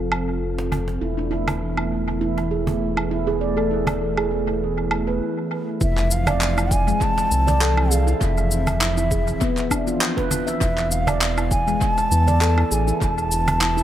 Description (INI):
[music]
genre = organic downtempo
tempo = 100 BPM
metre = 4/4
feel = swing 54% on 16ths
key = unclear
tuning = A4 = 440 Hz
[part]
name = airy breathy pad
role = sustained chords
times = 0.0-13.8 s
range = E3 to A4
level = -28 LUFS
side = equal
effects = chorus, vintage 12-bit sampler grit, sidechain pumping
[part]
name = round analog bass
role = bass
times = 0.0-13.8 s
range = E1 to E2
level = -23 LUFS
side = equal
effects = sidechain pumping
[part]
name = electronic woodblock, shaker and handclaps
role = drums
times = 0.1-13.8 s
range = none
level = -26 LUFS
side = equal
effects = analog delay
[part]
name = cajon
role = percussion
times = 0.6-13.6 s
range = none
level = -29 LUFS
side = right 1 dB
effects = analog delay
[part]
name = handpan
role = arpeggios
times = 1.0-13.8 s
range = G#3 to E5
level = -25 LUFS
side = right 2 dB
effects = analog delay
[part]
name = bansuri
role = melody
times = 5.8-13.8 s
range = E5 to A5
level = -24 LUFS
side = right 1 dB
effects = analog delay
[part]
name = electronic kick drum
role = drums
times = 5.8-13.1 s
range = none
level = -24 LUFS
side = equal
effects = none
[sound]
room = moderate spring reverb, RT60 2.4 s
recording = echo-heavy mix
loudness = -19 LUFS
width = side -11 dB against mid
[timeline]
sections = 0.0-5.8 A section; 5.8-13.8 B section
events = break 5.2-5.8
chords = 0.0 F; 1.0 Esus4; 5.8 Fmaj7(no3); 10.6 E7sus4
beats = 0.41 | 1.01 1.61 2.21 2.81 | 3.41 4.01 4.61 5.21 | 5.81 6.41 7.01 7.61 | 8.21 8.81 9.41 10.01 | 10.61 11.21 11.81 12.41 | 13.01 13.61